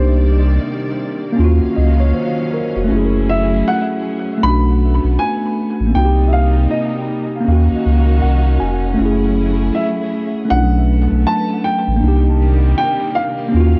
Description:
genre	lo-fi hip hop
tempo	79 BPM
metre	4/4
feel	swing 60% on 16ths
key	unclear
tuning	A4 = 440 Hz
part	dark upright piano	melody	0.0-13.8 s	C5 to B5	-24 LUFS	equal	low-pass filter, dub echo
part	mellow tine electric piano	accompaniment	0.0-13.8 s	F#3 to G#5	-21 LUFS	equal	low-pass filter, dub echo
part	warm studio string section	sustained chords	0.0-13.8 s	C3 to E#5	-27 LUFS	equal	low-pass filter
part	warm sub bass	bass	0.0-13.8 s	E#1 to D#2	-16 LUFS	equal	none
room	studio ambience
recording	echo-heavy mix, cassette tape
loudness	-16 LUFS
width	mono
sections	0.0-13.8 A section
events	tine electric piano fill 7.8-9.0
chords	0.0 Cm9; 1.4 D#m9; 2.9 F#m9; 4.4 Bm9; 5.9 Cm7; 7.5 D#m9; 9.0 F#m9; 10.5 Bm9; 12.0 Cm9

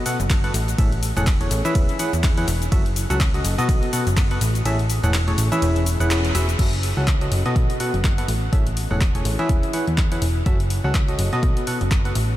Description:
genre	piano house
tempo	124 BPM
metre	4/4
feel	swing 58% on 16ths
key	F# dorian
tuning	A4 = 440 Hz
part	barking FM electric piano	riff	0.0-12.1 s	A2 to F#5	-24 LUFS	equal	chorus, cassette tape, sidechain pumping, ping-pong delay
part	punchy analog drum machine	drums	0.1-12.3 s	cabasa, crash cymbal, handclaps, hi-hat, ride cymbal	-28 LUFS	left 2 dB	overdrive, small room ambience
part	plucky analog bass	bass	0.2-12.4 s	E1 to E2	-22 LUFS	equal	sidechain pumping
part	electronic kick drum	drums	0.3-12.0 s	none	-20 LUFS	equal	overdrive, small room ambience
room	light reverb, digital ambience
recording	none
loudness	-18 LUFS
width	side -14 dB against mid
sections	0.0-6.6 A section; 6.6-12.4 B section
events	drop 0.0-6.6; kick drops out 4.7-6.6; band accent 6.1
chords	0.0 B7(no3); 0.5 Amaj7; 1.8 E6; 2.7 F#m; 3.7 B7; 4.4 Amaj7; 5.6 E6; 6.6 F#m; 7.6 B7; 8.3 Amaj7; 9.5 E6; 10.5 F#m; 11.4 B7

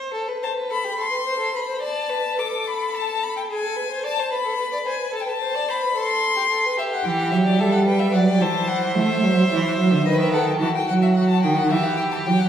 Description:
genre	classical, baroque-style fugue for string quartet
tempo	73 BPM (dotted quarters)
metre	12/8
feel	straight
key	A minor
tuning	A4 = 443 Hz
part	rich violin	second line	0.0-12.5 s	F#4 to D5	-25 LUFS	left 1 dB	none
part	rich violin	melody	0.4-12.5 s	D5 to D6	-24 LUFS	left 4 dB	none
part	clear cello	bass	7.0-12.5 s	D3 to A3	-18 LUFS	right 2 dB	none
room	wet recital hall reverb, RT60 1.8 s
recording	heard from further back in the room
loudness	-19 LUFS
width	side -9 dB against mid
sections	0.1-12.5 A section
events	none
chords	0.1 Am; 1.8 Asus4; 3.5 G#m; 5.1 Am; 6.8 Em; 8.4 F#m7b5/E; 10.1 B7/D# (rootless); 11.7 Em

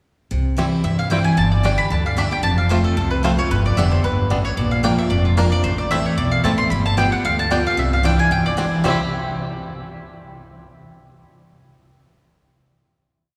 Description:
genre	bluegrass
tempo	225 BPM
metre	4/4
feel	swing 54% on 8ths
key	C major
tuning	A4 = 442 Hz
part	picked steel-string acoustic guitar	accompaniment	0.3-9.0 s	E2 to G4	-24 LUFS	equal	none
part	upright bass	bass	0.3-9.0 s	F1 to G2	-23 LUFS	equal	none
part	bluegrass banjo	arpeggios	0.6-9.0 s	G3 to G4	-29 LUFS	equal	none
part	mandolin	melody	0.8-9.0 s	F4 to C6	-25 LUFS	equal	none
room	wet cathedral reverb, RT60 4.2 s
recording	recorded in a church or concert hall, small room ambience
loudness	-19 LUFS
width	mono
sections	0.3-8.8 A section; 8.8-9.9 final chord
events	none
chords	0.3 C; 1.4 G5; 2.4 F; 3.5 G; 4.6 Bb; 5.6 Am; 6.7 G7; 7.8 Cadd9; 8.8 C

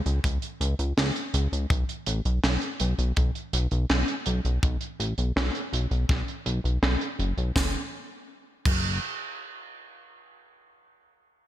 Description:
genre	synthwave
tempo	82 BPM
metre	4/4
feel	straight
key	unclear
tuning	A4 = 440 Hz
part	chorused synth bass	bass	0.1-9.0 s	F#1 to C#2	-25 LUFS	equal	sidechain pumping
part	tight funk drum kit	drums	0.1-8.8 s	crash cymbal, hi-hat, snare drum	-30 LUFS	right 1 dB	low-pass filter on hats, low-pass filter on cymbals, low-pass filter on snare, low-pass filter on room, gated reverb
part	kick drum	drums	0.2-8.8 s	none	-26 LUFS	equal	none
room	light reverb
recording	bright 1980s-style digital production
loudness	-24 LUFS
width	side -13 dB against mid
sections	0.0-7.6 A section; 7.6-10.5 B section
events	none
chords	none

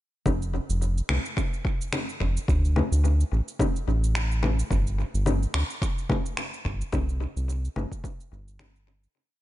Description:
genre	sunset chillout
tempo	108 BPM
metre	4/4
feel	swing 56% on 16ths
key	F major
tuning	A4 = 440 Hz
part	round analog bass	bass	0.3-9.1 s	F1 to D2	-24 LUFS	equal	none
part	electronic congas, shaker and finger snaps	drums	0.3-9.1 s	none	-30 LUFS	left 2 dB	tape echo
part	electronic kick drum	drums	0.3-8.2 s	none	-28 LUFS	equal	none
room	little or no reverb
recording	echo-heavy mix, nothing above 10.5 kHz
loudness	-24 LUFS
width	side -15 dB against mid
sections	0.3-9.2 groove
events	fade-out 6.2-9.2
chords	none

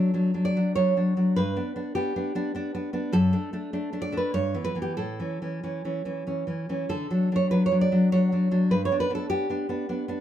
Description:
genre	romantic piece for solo classical guitar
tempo	90-105 BPM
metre	3/4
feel	rubato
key	D major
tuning	A4 = 439 Hz
part	nylon-string guitar	solo	0.0-10.2 s	F#2 to D5	-23 LUFS	equal	none
room	little or no reverb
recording	none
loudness	-23 LUFS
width	side -11 dB against mid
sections	0.0-10.2 A section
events	none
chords	0.0 D; 1.4 G; 3.1 D/F#; 4.3 Em/G; 5.0 A; 6.9 D; 8.7 G

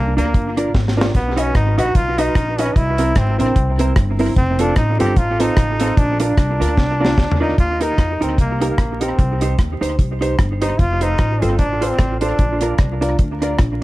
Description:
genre	ska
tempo	149 BPM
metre	4/4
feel	swing 57% on 8ths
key	Eb major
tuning	A4 = 438 Hz
part	brilliant trombone	melody	0.0-12.8 s	Bb3 to G4	-22 LUFS	equal	tape echo
part	upright bass	bass	0.0-13.8 s	F1 to F2	-20 LUFS	equal	none
part	mellow electric guitar	accompaniment	0.2-13.6 s	C4 to C5	-23 LUFS	right 3 dB	tape echo
part	warm upright piano	stabs	0.2-13.5 s	Eb4 to D#5	-26 LUFS	left 2 dB	none
part	deep reggae drum kit	drums	0.2-13.7 s	hi-hat, kick drum, rim click, snare drum, toms	-18 LUFS	equal	none
room	light reverb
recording	vinyl crackle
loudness	-15 LUFS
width	side -17 dB against mid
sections	0.0-7.6 A section; 7.6-13.8 B section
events	drum fill 0.7-1.2, 6.8-7.6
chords	0.0 Bb; 1.2 B; 2.8 C7; 4.4 F; 6.0 Bb; 7.6 Eb; 9.2 Cm; 10.8 F; 12.4 Bb

